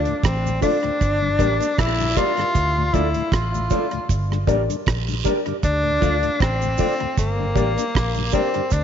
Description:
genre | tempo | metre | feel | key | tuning
roots reggae | 78 BPM | 4/4 | swing 56% on 16ths | unclear | A4 = 440 Hz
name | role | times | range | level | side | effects
breathy tenor saxophone | melody | 0.0-8.8 s | Bb3 to F4 | -23 LUFS | left 2 dB | tape echo
vintage muted fingered electric bass | bass | 0.0-8.8 s | G1 to D2 | -23 LUFS | right 1 dB | none
mellow tonewheel organ | accompaniment | 0.1-8.6 s | D2 to D4 | -29 LUFS | left 9 dB | chorus vibrato, slow rotary speaker
deep reggae drum kit | drums | 0.1-8.8 s | hi-hat, kick drum, rim click | -23 LUFS | right 2 dB | none
cabasa and guiro | percussion | 0.5-8.8 s | none | -35 LUFS | right 13 dB | none
mellow electric guitar | accompaniment | 0.6-8.6 s | F4 to D5 | -29 LUFS | right 10 dB | tape echo
dark upright piano | stabs | 0.6-8.5 s | D4 to D5 | -28 LUFS | left 8 dB | none
room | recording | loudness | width
moderate echo chamber reverb, RT60 2.3 s | 1960s-style stereo with parts hard left and right, nothing above 7.6 kHz | -18 LUFS | side -8 dB against mid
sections
0.0-8.8 A section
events
none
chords
0.0 Dm; 1.0 Gm; 2.5 Dm; 4.1 Gm; 5.6 Dm; 7.2 Gm

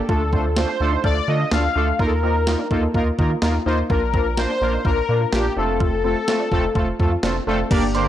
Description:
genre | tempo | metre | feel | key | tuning
synth-pop | 126 BPM | 4/4 | straight | unclear | A4 = 440 Hz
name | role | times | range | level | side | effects
resonant blip pluck | arpeggios | 0.0-8.1 s | C4 to G4 | -32 LUFS | equal | phaser, tape echo
analog synth brass | melody | 0.1-8.1 s | G4 to F5 | -23 LUFS | left 3 dB | chorus, tape echo
analog synth brass | accompaniment | 0.1-8.1 s | A3 to D5 | -23 LUFS | equal | chorus
rubbery square bass | bass | 0.1-8.1 s | F1 to Eb3 | -23 LUFS | equal | none
gated 80s digital drum machine | drums | 0.1-8.1 s | crash cymbal, hi-hat, kick drum, snare drum | -23 LUFS | equal | gated reverb, gated reverb snare
phased analog pad | sustained chords | 7.7-8.1 s | D3 to G4 | -26 LUFS | right 3 dB | phaser, chorus
room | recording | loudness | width
light reverb, digital ambience | dry, gritty hardware recording, cassette tape | -18 LUFS | side -12 dB against mid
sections
0.0-7.7 A section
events
none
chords
0.1 Dm; 2.0 Ebsus2; 3.9 Bb; 5.6 F

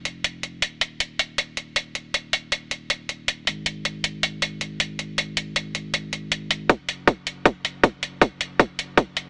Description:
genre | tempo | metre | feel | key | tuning
future bass | 158 BPM | 4/4 | half-time | unclear | A4 = 440 Hz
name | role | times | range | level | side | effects
saturated sub bass | bass | 0.0-9.3 s | Eb1 to Ab1 | -37 LUFS | equal | sidechain pumping
electronic hi-hat | drums | 0.1-9.2 s | none | -26 LUFS | equal | none
electronic kick drum | drums | 6.7-9.1 s | none | -15 LUFS | equal | none
room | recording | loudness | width
little or no reverb | AM radio sound | -22 LUFS | side -34 dB against mid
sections
0.0-6.7 A section; 6.7-9.3 B section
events
build-up 6.7-9.3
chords
none

